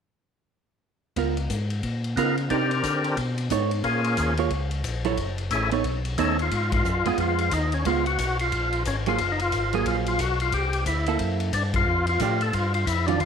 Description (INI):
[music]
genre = soul jazz organ trio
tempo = 179 BPM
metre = 4/4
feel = swing 62% on 8ths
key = Db mixolydian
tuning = A4 = 440 Hz
[part]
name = hollow-body jazz guitar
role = accompaniment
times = 1.2-13.2 s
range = Eb3 to D5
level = -27 LUFS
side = right 9 dB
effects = none
[part]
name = mellow tonewheel organ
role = bass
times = 1.2-13.3 s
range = Gb1 to D3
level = -27 LUFS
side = left 1 dB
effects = chorus vibrato, slow rotary speaker
[part]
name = swinging big-band drum kit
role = drums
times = 1.2-13.3 s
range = hi-hat, kick drum, ride cymbal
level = -32 LUFS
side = left 4 dB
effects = none
[part]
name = percussive tonewheel organ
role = melody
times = 2.2-13.3 s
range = A3 to Bb4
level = -25 LUFS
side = left 2 dB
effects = slow rotary speaker, overdrive, chorus vibrato
[sound]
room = moderate echo chamber reverb, RT60 1.3 s, studio reverb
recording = 1960s-style stereo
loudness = -22 LUFS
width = side -7 dB against mid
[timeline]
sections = 1.2-6.5 A section; 6.5-13.3 B section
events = band accent 6.7, 11.7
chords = 1.2 Db13; 2.5 Cm9; 3.2 Cb9; 3.8 Bbm7; 5.2 Gbm7; 5.8 Cb9; 6.5 Ebmadd9; 7.9 Db7; 9.2 Gbmaj9; 10.5 C13; 11.9 F69